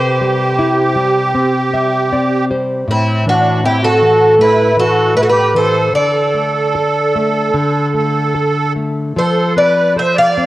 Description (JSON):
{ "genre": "fado-style ballad", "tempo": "73-80 BPM", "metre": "4/4", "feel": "rubato", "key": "unclear", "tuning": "A4 = 436 Hz", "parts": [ { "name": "picked twelve-string acoustic guitar", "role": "melody", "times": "0.0-10.5 s", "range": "E4 to F5", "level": "-14 LUFS", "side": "equal", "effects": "cassette tape" }, { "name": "musette accordion", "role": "second line", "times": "0.0-10.5 s", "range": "C4 to D5", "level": "-16 LUFS", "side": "right 3 dB", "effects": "cassette tape" }, { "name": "nylon-string guitar", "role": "accompaniment", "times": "0.0-10.5 s", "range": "A2 to E5", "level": "-17 LUFS", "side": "left 1 dB", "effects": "cassette tape" } ], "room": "moderate spring reverb, RT60 2.0 s", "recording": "home recording on cassette", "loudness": "-11 LUFS", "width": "side -16 dB against mid", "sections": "0.0-10.5 A section", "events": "nylon-string guitar fill 1.3-2.9", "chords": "0.0 C; 2.9 Am; 5.9 D5; 9.2 F", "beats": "0.58 1.35 2.12 | 2.87 3.63 4.38 5.16 | 5.95 6.75 7.55 8.36 | 9.17 9.97" }